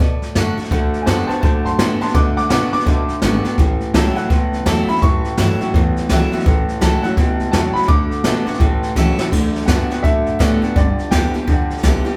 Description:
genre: rockabilly.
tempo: 167 BPM.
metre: 4/4.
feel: swing 62% on 8ths.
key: D major.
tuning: A4 = 440 Hz.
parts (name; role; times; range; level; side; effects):
warm upright piano; melody; 0.0-11.7 s; C5 to D6; -26 LUFS; equal; none.
picked steel-string acoustic guitar; accompaniment; 0.0-12.2 s; E2 to G4; -26 LUFS; equal; none.
upright bass; bass; 0.0-12.1 s; G1 to B2; -24 LUFS; equal; none.
jazz brush drum kit; drums; 0.2-12.1 s; crash cymbal, hi-hat, kick drum, snare drum; -20 LUFS; equal; none.
electric guitar through a small old amp; riff; 0.7-12.2 s; G2 to B3; -23 LUFS; equal; none.
room: moderate large studio reverb, RT60 0.8 s.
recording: band playing live in one room.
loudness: -17 LUFS.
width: mono.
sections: 0.0-9.3 A section; 9.3-12.2 B section.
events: upright piano solo 0.0-9.3; drum fill 9.0-9.3.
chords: 0.0 D; 3.6 A; 7.9 D; 8.6 A; 9.3 D; 10.8 G.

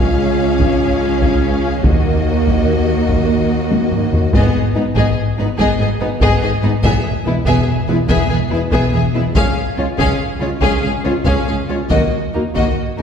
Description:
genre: cinematic, epic orchestral film score.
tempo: 96 BPM (dotted quarters).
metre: 12/8.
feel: straight.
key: unclear.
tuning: A4 = 440 Hz.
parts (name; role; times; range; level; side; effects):
warm symphonic violin section; melody; 0.0-13.0 s; A#4 to E#5; -25 LUFS; left 4 dB; none.
warm symphonic violin section; second line; 0.0-13.0 s; D#4 to G#4; -23 LUFS; left 2 dB; none.
rich symphonic viola section; accompaniment; 0.0-13.0 s; A#3 to C#4; -22 LUFS; right 1 dB; none.
mellow French horn section; sustained chords; 0.0-13.0 s; G#3 to F#4; -24 LUFS; left 4 dB; none.
rich symphonic cello section; bass; 0.0-13.0 s; C#2 to G#2; -21 LUFS; right 2 dB; none.
rich symphonic double bass section; bass; 0.0-13.0 s; E1 to D#2; -20 LUFS; right 1 dB; none.
taiko ensemble; drums; 0.6-13.0 s; none; -19 LUFS; equal; none.
room: wet scoring stage reverb, RT60 1.6 s.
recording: heard from further back in the room.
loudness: -13 LUFS.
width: side -7 dB against mid.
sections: 0.0-13.0 A section.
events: drum fill 3.7-4.3.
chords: 0.0 C#; 1.8 D#m; 4.3 G#m; 6.8 E; 9.4 C#; 11.9 D#m.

